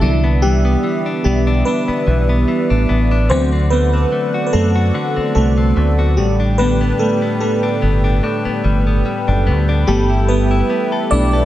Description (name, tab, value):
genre	R&B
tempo	73 BPM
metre	4/4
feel	swing 54% on 16ths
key	unclear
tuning	A4 = 438 Hz
part	FM electric piano with soft pad layer	accompaniment	0.0-11.4 s	D3 to D5	-18 LUFS	right 1 dB	chorus
part	warm analog pad	sustained chords	0.0-11.4 s	B3 to B5	-24 LUFS	right 2 dB	chorus
part	direct-recorded clean electric guitar	arpeggios	0.0-11.4 s	A2 to A4	-21 LUFS	left 3 dB	digital delay
part	deep dub fingered electric bass	bass	0.0-11.4 s	F#1 to F#2	-15 LUFS	equal	none
room	light reverb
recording	none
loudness	-13 LUFS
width	side -14 dB against mid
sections	0.0-11.4 A section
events	FM electric piano solo 0.0-11.4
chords	0.0 Cmaj9; 3.3 D7; 6.2 A9sus4; 9.9 G69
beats	| 0.01 0.83 1.66 2.48 | 3.30 4.12 4.94 5.77 | 6.59 7.41 8.23 9.05 | 9.88 10.70